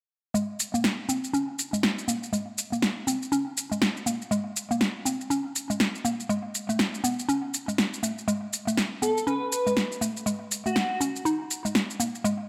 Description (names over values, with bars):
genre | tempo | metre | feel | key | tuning
deep house | 121 BPM | 4/4 | swing 60% on 16ths | unclear | A4 = 440 Hz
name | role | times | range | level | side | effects
mallet-like synth pluck | arpeggios | 0.3-12.3 s | Ab3 to Eb4 | -31 LUFS | equal | chorus, delay
electronic shaker and snare drum | drums | 0.3-12.4 s | none | -30 LUFS | equal | overdrive, studio reverb
airy dreamy lead | melody | 9.0-11.0 s | Gb4 to Cb5 | -32 LUFS | equal | chorus, delay
room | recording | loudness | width
moderate lush hall reverb, RT60 1.5 s | none | -28 LUFS | mono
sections
0.3-12.5 A section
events
filter sweep on synth arpeggio sound 0.3-12.5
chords
0.3 Bbm9; 6.3 Abm; 11.0 Eb7sus4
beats
| 0.34 0.84 1.33 1.83 | 2.33 2.82 3.32 3.81 | 4.31 4.81 5.30 5.80 | 6.29 6.79 7.29 7.78 | 8.28 8.77 9.27 9.77 | 10.26 10.76 11.25 11.75 | 12.24